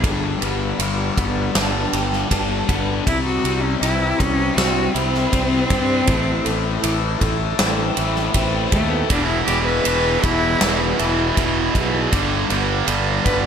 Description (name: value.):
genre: quiet-loud alternative rock.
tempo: 79 BPM.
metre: 4/4.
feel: straight.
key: unclear.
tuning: A4 = 438 Hz.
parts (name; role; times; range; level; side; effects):
electric guitar through a small old amp; arpeggios; 0.0-13.5 s; E2 to G4; -26 LUFS; right 5 dB; ensemble chorus, tape echo.
overdriven electric guitar; riff; 0.0-13.5 s; E2 to C4; -24 LUFS; left 14 dB; phaser.
fuzz fingered electric bass; bass; 0.0-13.5 s; E1 to G2; -24 LUFS; equal; overdrive.
huge arena drum kit; drums; 0.0-13.4 s; kick drum, ride cymbal, snare drum; -23 LUFS; right 1 dB; none.
clear cello; melody; 3.1-13.4 s; A3 to B4; -22 LUFS; equal; tape echo.
tight distorted guitar; riff; 9.1-13.5 s; E2 to G3; -22 LUFS; right 12 dB; distortion.
room: light reverb, small room ambience.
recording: none.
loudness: -17 LUFS.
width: side -7 dB against mid.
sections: 0.0-13.5 A section.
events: cello solo 0.0-13.5.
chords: 0.0 G; 3.1 C; 6.1 Am; 9.1 E; 12.1 G.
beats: | 0.03 0.79 1.54 2.30 | 3.06 3.81 4.57 5.33 | 6.08 6.84 7.59 8.35 | 9.11 9.86 10.62 11.37 | 12.13 12.88.